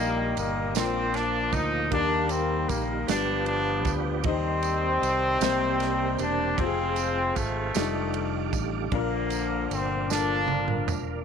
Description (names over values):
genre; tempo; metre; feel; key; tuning
slow gospel; 51 BPM (dotted quarters); 6/8; straight; unclear; A4 = 440 Hz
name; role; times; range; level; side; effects
warm horn section; melody; 0.0-11.2 s; C3 to Eb4; -27 LUFS; equal; none
warm concert grand piano; accompaniment; 0.0-11.2 s; G2 to E5; -31 LUFS; left 14 dB; none
tonewheel organ; sustained chords; 0.0-11.2 s; C3 to D5; -35 LUFS; right 14 dB; slow rotary speaker, chorus vibrato
fingered electric bass; bass; 0.0-11.2 s; E1 to Eb2; -32 LUFS; right 1 dB; none
natural country drum kit; drums; 0.4-11.1 s; kick drum, ride cymbal, snare drum, toms; -34 LUFS; right 5 dB; none
tambourine; percussion; 0.4-11.2 s; none; -39 LUFS; right 19 dB; none
room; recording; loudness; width
small room ambience; 1960s-style stereo with parts hard left and right; -24 LUFS; side -7 dB against mid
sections
0.0-11.2 A section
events
drum fill 10.1-11.2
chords
0.0 Eb/Bb; 0.8 Bb; 1.9 Eb; 3.1 G7; 4.3 Cm/Eb; 5.4 C7; 6.6 Fm; 7.8 F13; 8.9 Bb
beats
0.75 | 1.92 3.08 | 4.25 5.42 | 6.59 7.75 | 8.92 10.09